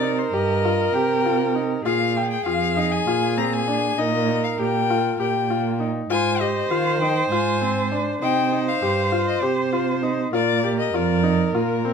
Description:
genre	contemporary instrumental, contemporary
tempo	198 BPM (eighths)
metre	7/8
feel	straight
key	C minor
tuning	A4 = 439 Hz
part	rich violin	melody	0.0-11.9 s	Bb4 to Bb5	-25 LUFS	left 9 dB	none
part	warm viola	second line	0.0-11.9 s	Ab4 to C5	-25 LUFS	right 3 dB	none
part	bright grand piano	arpeggios	0.0-11.9 s	C4 to G5	-25 LUFS	left 4 dB	none
part	dark cello	bass	0.0-11.9 s	F2 to Eb3	-25 LUFS	right 6 dB	none
room	light reverb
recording	minimal, uncompressed stereo recording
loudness	-19 LUFS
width	side -6 dB against mid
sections	0.0-11.9 A section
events	none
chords	0.0 Cm; 1.9 Bb7; 4.0 Eb/Bb; 6.1 Ab; 8.2 Cm; 10.3 Bb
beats	0.03 0.34 0.64 0.94 1.25 1.55 | 1.85 2.16 2.46 2.77 3.07 3.37 3.68 | 3.98 4.28 4.58 4.89 5.19 5.49 5.80 | 6.10 6.40 6.71 7.01 7.31 7.61 7.92 | 8.22 8.52 8.82 9.12 9.43 9.73 10.03 | 10.33 10.63 10.94 11.24 11.54 11.84

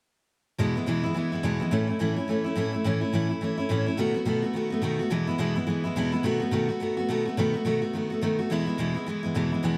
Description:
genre	rock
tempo	212 BPM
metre	4/4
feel	swing 60% on 8ths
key	E major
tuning	A4 = 441 Hz
part	picked steel-string acoustic guitar	solo	0.6-9.8 s	E2 to F#4	-27 LUFS	equal	analog delay
room	moderate echo chamber reverb, RT60 2.1 s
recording	none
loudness	-27 LUFS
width	mono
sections	0.6-9.6 A section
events	none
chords	0.6 E; 1.7 A; 4.0 B7; 5.1 E; 6.2 B7; 8.5 E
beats	| 0.59 0.87 1.16 1.44 | 1.72 2.00 2.29 2.57 | 2.85 3.13 3.42 3.70 | 3.98 4.26 4.54 4.83 | 5.11 5.39 5.67 5.96 | 6.24 6.52 6.80 7.09 | 7.37 7.65 7.94 8.22 | 8.50 8.78 9.07 9.35 | 9.63

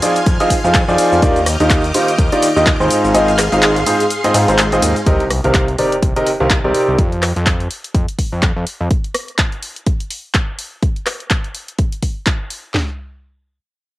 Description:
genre	piano house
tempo	125 BPM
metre	4/4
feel	swing 58% on 16ths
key	C minor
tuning	A4 = 440 Hz
part	string machine, violins	sustained chords	0.0-5.0 s	Ab4 to G6	-22 LUFS	equal	ensemble chorus, sidechain pumping
part	bright grand piano	riff	0.0-7.0 s	Ab2 to F5	-14 LUFS	equal	sidechain pumping
part	punchy analog drum machine	drums	0.0-12.6 s	cabasa, handclaps, hi-hat, ride cymbal, rim click	-20 LUFS	equal	overdrive, cassette tape
part	fat analog bass	bass	0.3-8.9 s	Ab1 to Ab2	-18 LUFS	equal	sidechain pumping
part	house drum kit	drums	0.3-12.9 s	handclaps, kick drum, snare drum, toms	-16 LUFS	equal	cassette tape
part	sub drop	sound effects	5.1-7.0 s	none	-27 LUFS	equal	none
room	moderate spring reverb, RT60 1.1 s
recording	home recording on cassette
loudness	-13 LUFS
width	side -17 dB against mid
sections	0.0-5.1 A section; 5.1-12.7 B section; 12.7-14.0 C section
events	drop 0.0-5.1; kick drops out 3.1-5.1; impact 5.1-7.0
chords	0.0 Fm7; 1.2 Ebmaj9; 2.9 Ab6; 5.1 Cm7; 7.0 N.C.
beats	0.27 0.74 | 1.23 1.71 2.19 2.67 | 3.15 3.62 4.11 4.58 | 5.07 5.54 6.03 6.50 | 6.99 7.46 7.95 8.43 | 8.90 9.38 9.87 10.35 | 10.82 11.30 11.79 12.27 | 12.74

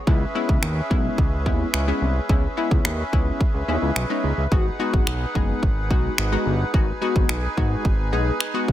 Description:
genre	dance-pop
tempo	108 BPM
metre	4/4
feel	straight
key	G# minor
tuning	A4 = 440 Hz
part	accordion	sustained chords	0.0-8.7 s	C#4 to G#5	-29 LUFS	right 1 dB	light tremolo tuning, stereo widening, sidechain pumping
part	funky polysynth comp	accompaniment	0.1-8.7 s	G#3 to G#4	-26 LUFS	left 3 dB	chorus, sidechain pumping
part	fat analog bass	bass	0.1-8.7 s	F#1 to D#2	-24 LUFS	equal	sidechain pumping
part	house drum kit	drums	0.1-8.7 s	finger snaps, kick drum	-22 LUFS	equal	none
room	little or no reverb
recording	none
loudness	-19 LUFS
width	side -13 dB against mid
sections	0.0-8.7 A section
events	none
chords	0.1 C#m7; 4.5 G#m7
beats	| 0.07 0.63 1.18 1.74 | 2.29 2.85 3.41 3.96 | 4.52 5.07 5.63 6.18 | 6.74 7.29 7.85 8.41

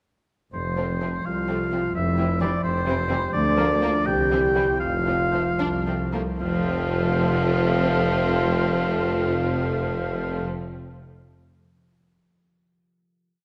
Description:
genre	cinematic, playful, whimsical film cue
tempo	73-88 BPM (dotted quarters)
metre	6/8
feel	straight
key	F major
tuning	A4 = 440 Hz
part	clear oboe	second line	0.5-10.4 s	C5 to G5	-30 LUFS	equal	none
part	warm French horn section	sustained chords	0.5-10.4 s	C4 to G4	-30 LUFS	equal	none
part	concert harp	arpeggios	0.5-10.7 s	C3 to F5	-34 LUFS	equal	none
part	clear tuba	bass	0.5-10.4 s	F1 to D2	-32 LUFS	equal	none
part	rich chamber cello section	bass	0.5-10.4 s	C2 to F2	-32 LUFS	equal	none
part	rich chamber double bass section	bass	0.5-10.4 s	F1 to D2	-34 LUFS	equal	none
part	rich chamber violin section	melody	0.8-10.4 s	Bb3 to D4	-34 LUFS	equal	none
part	rich chamber violin section	second line	0.8-10.4 s	G3 to Bb3	-36 LUFS	equal	none
part	rich chamber viola section	accompaniment	0.8-10.4 s	E3 to F3	-34 LUFS	equal	none
room	wet scoring stage reverb, RT60 1.7 s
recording	none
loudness	-23 LUFS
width	mono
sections	0.5-6.4 A section; 6.4-9.7 final chord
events	slowing down 2.6-6.4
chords	0.5 F; 2.0 C/F; 3.3 Bb/D; 4.1 C; 4.8 F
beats	| 0.54 1.25 | 1.95 2.64 | 3.33 4.06 | 4.81 5.58 | 6.40 7.22 | 8.04 8.87

